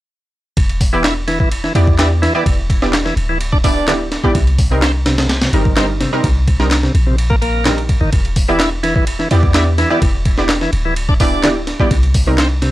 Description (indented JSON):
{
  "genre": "breakbeat, breaks",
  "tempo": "127 BPM",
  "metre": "4/4",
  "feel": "straight",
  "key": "unclear",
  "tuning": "A4 = 440 Hz",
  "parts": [
    { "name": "warm 808-style bass", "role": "bass", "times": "0.6-12.7 s", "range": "D1 to E2", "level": "-17 LUFS", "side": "equal", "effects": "none" },
    { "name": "breakbeat sampler-style drum kit", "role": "drums", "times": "0.6-12.7 s", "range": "hi-hat, kick drum, ride cymbal, snare drum", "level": "-16 LUFS", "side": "equal", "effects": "none" },
    { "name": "bright tonewheel organ", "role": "riff", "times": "0.9-12.7 s", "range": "Bb2 to E4", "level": "-20 LUFS", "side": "equal", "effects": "overdrive, slow rotary speaker, tube saturation, analog delay" },
    { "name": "orchestra-hit-like synth stab", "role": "stabs", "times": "0.9-12.4 s", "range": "G3 to D5", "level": "-20 LUFS", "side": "right 1 dB", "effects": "built-in reverb, cassette tape, analog delay" },
    { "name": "electronic handclaps", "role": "drums", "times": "1.0-12.5 s", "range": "none", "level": "-22 LUFS", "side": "equal", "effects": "none" }
  ],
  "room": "light reverb",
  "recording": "dry, gritty hardware recording, cassette tape",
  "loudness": "-12 LUFS",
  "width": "side -16 dB against mid",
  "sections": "0.6-12.7 A section",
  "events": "none",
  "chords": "0.6 Em7; 4.4 Cm7; 8.1 Em7; 11.9 Cm7",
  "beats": "| 0.57 1.04 1.52 1.99 | 2.46 2.94 3.41 3.88 | 4.35 4.82 5.30 5.77 | 6.24 6.71 7.19 7.66 | 8.13 8.60 9.08 9.55 | 10.02 10.49 10.97 11.44 | 11.91 12.38"
}